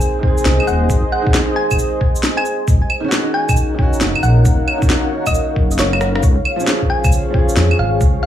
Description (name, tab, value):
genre	future garage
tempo	135 BPM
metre	4/4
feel	swing 66% on 16ths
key	Eb dorian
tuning	A4 = 440 Hz
part	thumb-piano-like synth pluck	melody	0.0-8.3 s	Db5 to Ab5	-24 LUFS	equal	chorus, tape echo
part	warm upright piano	accompaniment	0.0-8.3 s	Eb3 to Ab4	-23 LUFS	right 2 dB	sidechain pumping, dub echo
part	dark analog pad	sustained chords	0.0-8.3 s	Eb4 to Gb5	-22 LUFS	left 2 dB	chorus, sidechain pumping
part	electronic shaker, snare drum, claves and rim click	drums	0.0-8.1 s	none	-20 LUFS	equal	none
part	electronic kick drum	drums	0.2-8.1 s	none	-16 LUFS	equal	none
part	swelling detuned saw bass	bass	0.5-8.1 s	Eb1 to F2	-16 LUFS	equal	tube saturation, sidechain pumping
room	light reverb, digital ambience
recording	small room ambience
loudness	-13 LUFS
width	side -11 dB against mid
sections	0.0-6.2 A section; 6.2-8.3 A section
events	drum fill 5.9-6.2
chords	0.0 Ab; 2.7 Ebm7; 6.2 Db